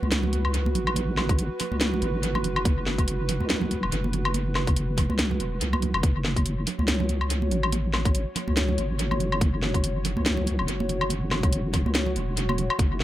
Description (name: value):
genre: deep dubstep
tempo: 142 BPM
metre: 4/4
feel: swing 57% on 16ths, half-time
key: F# minor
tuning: A4 = 440 Hz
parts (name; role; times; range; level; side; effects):
- dark analog pad; sustained chords; 0.0-13.0 s; F#4 to E5; -33 LUFS; right 1 dB; chorus
- deep soft wobble bass; bass; 0.0-13.0 s; E1 to C#2; -26 LUFS; equal; chorus
- congas; percussion; 0.0-12.9 s; none; -33 LUFS; right 4 dB; dub echo
- garage drum kit; drums; 0.1-13.0 s; hi-hat, snare drum, woodblock; -28 LUFS; left 1 dB; dub echo
- electronic kick drum; drums; 1.3-12.9 s; none; -23 LUFS; equal; none
room: little or no reverb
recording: echo-heavy mix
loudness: -23 LUFS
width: side -14 dB against mid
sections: 0.0-13.0 A section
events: kick drops out 5.2-6.0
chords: 0.0 F#5